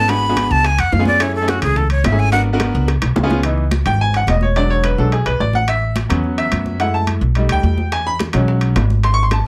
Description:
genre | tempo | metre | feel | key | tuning
Afro-Cuban jazz | 214 BPM | 4/4 | straight | F# minor | A4 = 439 Hz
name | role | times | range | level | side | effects
breathy bright jazz flute | melody | 0.0-2.4 s | F#4 to B5 | -19 LUFS | equal | none
bright upright piano | accompaniment | 0.0-9.5 s | E3 to C#6 | -22 LUFS | equal | none
upright bass | bass | 0.0-9.4 s | E1 to F#2 | -20 LUFS | equal | none
bongos | percussion | 0.1-3.4, 7.9-9.5 s | none | -30 LUFS | equal | none
congas | percussion | 0.1-9.5 s | none | -28 LUFS | equal | none
timbales | percussion | 0.1-9.5 s | none | -29 LUFS | equal | none
room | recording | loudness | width
light reverb | close, detailed microphones | -16 LUFS | mono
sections
0.0-3.4 A section; 3.4-9.5 A section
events
flute solo 0.0-3.4; drum fill 2.6-3.4; upright piano solo 3.4-9.5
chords
0.1 G#m7b5; 0.6 C#7; 1.2 F#m9; 2.3 G#m7b5; 2.9 C#7; 3.4 C#m7; 4.6 E7; 5.7 A6; 6.8 F#m7; 7.4 B7alt; 7.9 E69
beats
| 0.09 0.37 0.65 0.93 | 1.21 1.49 1.77 2.04 | 2.33 2.60 2.88 3.16 | 3.44 3.72 4.00 4.28 | 4.56 4.84 5.12 5.40 | 5.68 5.96 6.24 6.52 | 6.80 7.08 7.36 7.64 | 7.92 8.20 8.48 8.76 | 9.04 9.32

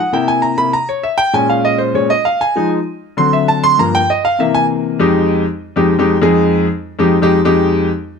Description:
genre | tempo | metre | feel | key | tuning
jazz | 196 BPM | 4/4 | straight | F minor | A4 = 438 Hz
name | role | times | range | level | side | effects
clear baby grand piano | solo | 0.0-7.9 s | F2 to C6 | -12 LUFS | left 1 dB | none
room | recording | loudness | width
little or no reverb | close, detailed microphones | -12 LUFS | side -6 dB against mid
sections
0.0-5.0 A section; 5.0-8.2 B section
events
grand piano solo 0.0-5.0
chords
0.1 C7; 1.3 Bbm7; 2.6 Fm7; 3.2 D7; 3.8 Gm7; 4.4 C7; 5.0 Fm7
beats
| 0.12 0.42 0.73 1.04 | 1.34 1.65 1.95 2.26 | 2.56 2.87 3.17 3.48 | 3.79 4.09 4.40 4.70 | 5.01 5.31 5.62 5.92 | 6.23 6.54 6.84 7.15 | 7.45 7.76

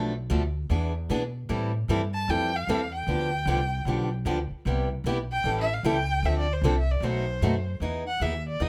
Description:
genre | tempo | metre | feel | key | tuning
acoustic string swing (jazz manouche) | 152 BPM | 4/4 | swing 63% on 8ths | unclear | A4 = 439 Hz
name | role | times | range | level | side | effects
picked steel-string acoustic guitar | accompaniment | 0.0-8.7 s | B2 to A4 | -30 LUFS | equal | none
upright bass | bass | 0.0-8.7 s | A1 to B2 | -31 LUFS | equal | none
warm violin | melody | 2.1-8.7 s | C5 to A5 | -32 LUFS | equal | none
room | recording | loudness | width
light reverb | close, detailed microphones | -27 LUFS | mono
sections
0.0-7.8 A section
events
none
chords
0.0 Bm7b5; 0.7 E7; 1.5 Am7; 3.1 G7; 4.7 Cmaj7; 5.4 A7; 6.2 Dm7; 7.0 B7b9; 7.8 Emaj7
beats
0.30 0.70 1.10 | 1.49 1.89 2.28 2.68 | 3.07 3.47 3.86 4.26 | 4.65 5.05 5.44 5.84 | 6.23 6.63 7.02 7.42 | 7.81 8.21 8.60

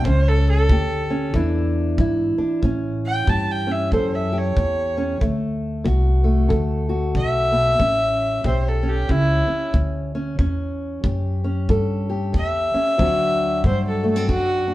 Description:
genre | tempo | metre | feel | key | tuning
acoustic country blues, solo or duo | 93 BPM | 4/4 | swing 61% on 8ths | A mixolydian | A4 = 441 Hz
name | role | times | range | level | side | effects
dark fiddle | melody | 0.0-14.7 s | E4 to A5 | -22 LUFS | equal | none
fingerpicked steel-string acoustic guitar | accompaniment | 0.0-14.7 s | E2 to A4 | -24 LUFS | left 1 dB | none
upright bass | bass | 0.0-14.7 s | A1 to A2 | -22 LUFS | equal | none
kick drum | drums | 0.1-14.5 s | none | -25 LUFS | equal | none
room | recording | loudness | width
moderate studio reverb, RT60 0.7 s | heard from further back in the room | -18 LUFS | side -16 dB against mid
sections
0.0-2.6 A section; 2.6-14.7 B section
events
fiddle solo 0.0-2.6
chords
0.1 A7; 1.3 E7; 2.6 A7; 5.2 D7; 7.8 A7; 13.0 D7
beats
| 0.05 0.69 1.34 1.98 | 2.63 3.27 3.92 4.56 | 5.21 5.86 6.51 7.15 | 7.80 8.45 9.10 9.75 | 10.40 11.05 11.70 12.35 | 13.00 13.65 14.30

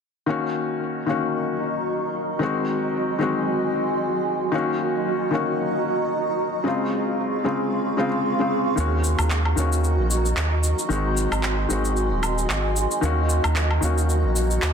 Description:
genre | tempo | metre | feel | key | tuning
organic downtempo | 113 BPM | 4/4 | swing 56% on 16ths | Eb dorian | A4 = 438 Hz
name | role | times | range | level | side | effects
felt-muted upright piano | accompaniment | 0.3-14.7 s | Db3 to Gb4 | -24 LUFS | left 3 dB | tape echo
granular cloud pad | sustained chords | 1.0-14.7 s | Gb4 to Db6 | -26 LUFS | right 2 dB | built-in reverb
round analog bass | bass | 8.8-14.7 s | Eb1 to Eb2 | -22 LUFS | right 1 dB | none
electronic shaker, woodblock and handclaps | drums | 8.8-14.7 s | none | -27 LUFS | equal | low-pass filter on perc, low-pass filter on snare, low-pass filter on room
room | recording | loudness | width
light reverb | dense, heavily limited modern master | -20 LUFS | side -6 dB against mid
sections
0.3-14.7 A section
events
filter sweep on ambient pad 0.3-14.7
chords
0.3 Ebm7; 2.4 Ab7; 4.5 Ebm7; 6.7 Dbmaj7; 8.8 Ebm7; 10.9 Ab7; 13.0 Ebm7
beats
| 0.29 0.82 1.35 1.88 | 2.41 2.94 3.47 4.00 | 4.53 5.06 5.59 6.13 | 6.66 7.19 7.72 8.25 | 8.78 9.31 9.84 10.37 | 10.90 11.44 11.97 12.50 | 13.03 13.56 14.09 14.62

